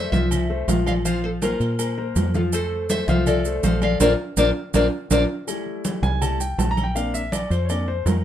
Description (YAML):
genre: latin, salsa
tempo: 162 BPM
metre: 4/4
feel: straight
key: unclear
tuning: A4 = 440 Hz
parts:
  - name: nylon-string guitar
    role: melody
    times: 0.0-5.2 s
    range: F4 to F5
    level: -23 LUFS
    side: left 2 dB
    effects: none
  - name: warm concert grand piano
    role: accompaniment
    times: 0.0-8.2 s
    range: F3 to Bb5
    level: -25 LUFS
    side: left 2 dB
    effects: none
  - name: deep dub fingered electric bass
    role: bass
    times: 0.0-8.2 s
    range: Bb1 to Bb2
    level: -24 LUFS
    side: equal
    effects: none
  - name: congas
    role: percussion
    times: 0.1-8.2 s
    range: none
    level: -28 LUFS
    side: right 1 dB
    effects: none
  - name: maracas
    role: percussion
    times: 0.1-8.2 s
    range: none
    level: -33 LUFS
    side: right 6 dB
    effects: none
  - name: agogo bells and timbales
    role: percussion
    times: 0.3-8.2 s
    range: none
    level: -30 LUFS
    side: right 5 dB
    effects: none
room: light reverb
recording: minimal, uncompressed stereo recording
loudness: -19 LUFS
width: side -11 dB against mid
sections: 0.0-5.5 A section; 5.5-8.2 B section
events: band accent 4.0-5.5; drum fill 4.9-5.5; grand piano solo 5.5-8.2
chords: 0.0 Fmaj7; 1.0 Bbsus2; 2.5 F; 4.0 Bbadd9; 5.5 Am7; 7.0 Bbadd9